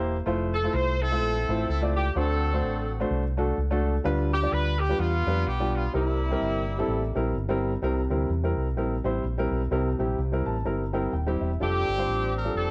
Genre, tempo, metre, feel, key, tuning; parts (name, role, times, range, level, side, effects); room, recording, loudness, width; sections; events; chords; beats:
uptempo gospel; 127 BPM; 4/4; swing 58% on 8ths; A4 = 436 Hz
warm upright piano; accompaniment; 0.0-12.7 s; C3 to Bb5; -30 LUFS; equal
fingered electric bass; bass; 0.0-12.7 s; Eb1 to F2; -30 LUFS; equal
clear horn section; melody; 0.5-7.3, 11.6-12.7 s; G3 to C5; -31 LUFS; equal
light reverb, small room ambience; worn, warbling old tape, cassette tape, warbly pitch drift; -26 LUFS; mono
0.0-7.8 A section; 7.8-11.6 B section; 11.6-12.7 C section
upright piano fill 10.2-11.6
0.3 Fmaj7; 2.2 D7; 4.0 G7/D; 5.9 C7; 11.6 F69
| 0.27 0.74 1.21 1.69 | 2.16 2.63 3.10 3.58 | 4.05 4.52 4.99 5.46 | 5.94 6.41 6.88 7.35 | 7.83 8.30 8.77 9.24 | 9.71 10.19 10.66 11.13 | 11.61 12.08 12.55